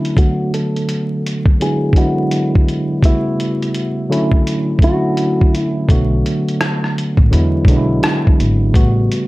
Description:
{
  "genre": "lo-fi hip hop",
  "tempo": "84 BPM",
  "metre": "4/4",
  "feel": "swing 65% on 16ths",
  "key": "B dorian",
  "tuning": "A4 = 440 Hz",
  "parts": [
    { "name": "hollow-body jazz guitar", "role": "melody", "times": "0.0-5.9 s", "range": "E4 to A4", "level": "-22 LUFS", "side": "left 1 dB", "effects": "low-pass filter, plate reverb" },
    { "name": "tine electric piano", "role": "accompaniment", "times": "0.0-9.3 s", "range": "C#3 to F#4", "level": "-17 LUFS", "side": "equal", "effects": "medium stereo tremolo, cassette tape, low-pass filter, plate reverb" },
    { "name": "lo-fi sampler-style drum kit", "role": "drums", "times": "0.1-9.3 s", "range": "hi-hat, kick drum, rim click", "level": "-14 LUFS", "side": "equal", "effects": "none" },
    { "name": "upright bass", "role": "bass", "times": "5.9-9.1 s", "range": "G#1 to E2", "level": "-16 LUFS", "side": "equal", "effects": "none" }
  ],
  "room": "light reverb",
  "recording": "vinyl crackle",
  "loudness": "-13 LUFS",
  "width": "side -20 dB against mid",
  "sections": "0.2-9.3 A section",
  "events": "filter sweep 0.2-9.3",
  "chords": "0.2 Bm7; 1.6 E9; 3.0 A13; 4.1 Dmaj9; 5.9 Bm7; 7.3 E9; 8.7 A13",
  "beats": "| 0.17 0.89 1.60 2.31 | 3.03 3.74 4.46 5.17 | 5.89 6.60 7.32 8.03 | 8.74"
}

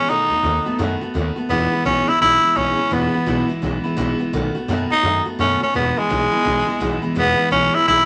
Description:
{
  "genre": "rockabilly",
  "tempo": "170 BPM",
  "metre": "4/4",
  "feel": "swing 63% on 8ths",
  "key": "E major",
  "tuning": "A4 = 441 Hz",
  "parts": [
    { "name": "raspy tenor saxophone", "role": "melody", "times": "0.0-8.1 s", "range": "G#3 to E4", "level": "-19 LUFS", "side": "equal", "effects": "none" },
    { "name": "picked steel-string acoustic guitar", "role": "accompaniment", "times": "0.0-8.1 s", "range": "E2 to F#4", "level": "-25 LUFS", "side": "equal", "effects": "none" },
    { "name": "upright bass", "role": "bass", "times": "0.0-8.1 s", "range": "E1 to F#2", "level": "-28 LUFS", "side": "equal", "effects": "none" }
  ],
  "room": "moderate large studio reverb, RT60 1.0 s",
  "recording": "none",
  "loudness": "-19 LUFS",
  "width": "mono",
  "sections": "0.0-1.5 A section; 1.5-8.1 B section",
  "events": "none",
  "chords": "0.1 B7; 1.5 E; 4.3 B7; 5.7 E",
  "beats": "| 0.08 0.43 0.79 1.14 | 1.50 1.85 2.20 2.56 | 2.91 3.27 3.62 3.97 | 4.33 4.68 5.04 5.39 | 5.74 6.10 6.45 6.80 | 7.16 7.51 7.86"
}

